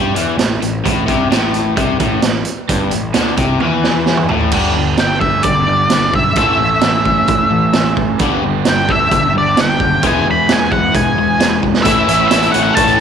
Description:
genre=classic rock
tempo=131 BPM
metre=4/4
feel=straight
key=A mixolydian from 4.5 s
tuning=A4 = 440 Hz
part: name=crunchy overdriven guitar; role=riff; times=0.0-13.0 s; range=G2 to E4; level=-18 LUFS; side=left 11 dB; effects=none
part: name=overdriven electric guitar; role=riff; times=0.0-13.0 s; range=E2 to A4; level=-21 LUFS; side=right 11 dB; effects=spring reverb
part: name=fuzz picked electric bass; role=bass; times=0.0-12.9 s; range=E1 to G2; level=-22 LUFS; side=equal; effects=overdrive
part: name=raw garage drum kit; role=drums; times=0.2-13.0 s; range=crash cymbal, hi-hat, kick drum, snare drum, toms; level=-17 LUFS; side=right 4 dB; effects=none
part: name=octave-fuzz lead guitar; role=melody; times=5.0-13.0 s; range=D5 to B5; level=-15 LUFS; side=equal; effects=distortion, slapback echo
part: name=warm grand piano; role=accompaniment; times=11.8-13.0 s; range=E4 to C#5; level=-24 LUFS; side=left 12 dB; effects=none
part: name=fuzz guitar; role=riff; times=11.8-13.0 s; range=A2 to A4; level=-22 LUFS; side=left 2 dB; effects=none
part: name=octave-fuzz lead guitar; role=second line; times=11.9-13.0 s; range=E4 to A4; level=-22 LUFS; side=right 8 dB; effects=distortion
room=light reverb, small room ambience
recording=1960s-style stereo with parts hard left and right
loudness=-11 LUFS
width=side -7 dB against mid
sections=0.0-4.5 A section; 4.5-11.9 B section; 11.9-13.0 C section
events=drum fill 3.6-4.5, 11.6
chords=0.0 A5; 4.5 G; 6.4 A; 8.2 G; 10.0 E; 11.9 A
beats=0.39 | 0.85 1.31 1.77 2.23 | 2.69 3.15 3.61 4.07 | 4.53 4.99 5.45 5.91 | 6.37 6.83 7.29 7.75 | 8.21 8.66 9.12 9.58 | 10.03 10.49 10.95 11.40 | 11.86 12.31 12.77

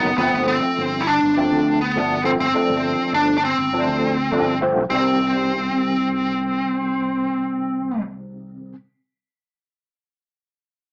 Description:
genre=jazz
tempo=102 BPM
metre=4/4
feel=straight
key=C dorian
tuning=A4 = 441 Hz
part: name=dark smooth lead guitar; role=melody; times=0.0-8.0 s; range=B3 to E4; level=-22 LUFS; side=equal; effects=overdrive
part: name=overdriven tine electric piano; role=accompaniment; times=0.0-8.7 s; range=C3 to Eb4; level=-26 LUFS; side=equal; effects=fast tremolo, ensemble chorus
part: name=mellow fretless electric bass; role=bass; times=0.0-8.7 s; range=Gb1 to D2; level=-31 LUFS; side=equal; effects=none
room=moderate studio reverb, RT60 0.6 s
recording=small speaker sound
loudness=-20 LUFS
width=mono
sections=0.0-4.9 A section; 4.9-7.3 B section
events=none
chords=0.2 G9sus4; 4.9 Cm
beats=| 0.18 0.78 1.37 1.96 | 2.55 3.14 3.73 4.32 | 4.91 5.50 6.09 6.68

